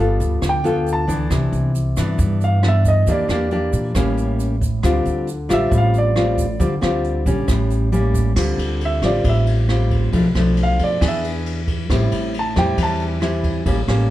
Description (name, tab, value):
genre	bossa nova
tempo	136 BPM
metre	4/4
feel	straight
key	D minor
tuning	A4 = 441 Hz
part	nylon-string guitar	accompaniment	0.0-14.1 s	G2 to A4	-20 LUFS	left 1 dB	none
part	upright bass	bass	0.0-14.1 s	G1 to Bb2	-20 LUFS	equal	none
part	jazz brush drum kit	drums	0.2-14.0 s	crash cymbal, hi-hat, kick drum, ride cymbal, rim click	-25 LUFS	right 1 dB	none
part	egg shaker	percussion	0.2-8.4 s	none	-40 LUFS	right 6 dB	none
part	warm concert grand piano	melody	0.5-13.0 s	D5 to A5	-22 LUFS	right 2 dB	none
room	light reverb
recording	dark, warm production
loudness	-16 LUFS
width	side -14 dB against mid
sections	0.0-8.4 A section; 8.4-14.1 A section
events	grand piano solo 0.0-8.4, 8.4-14.1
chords	0.0 G9; 1.3 Cmaj9; 3.1 Em7b5; 4.0 A7b9; 4.8 Dm7; 7.5 A7b9; 8.4 Dm7; 10.1 Bm7b5; 11.0 E7; 11.9 Am7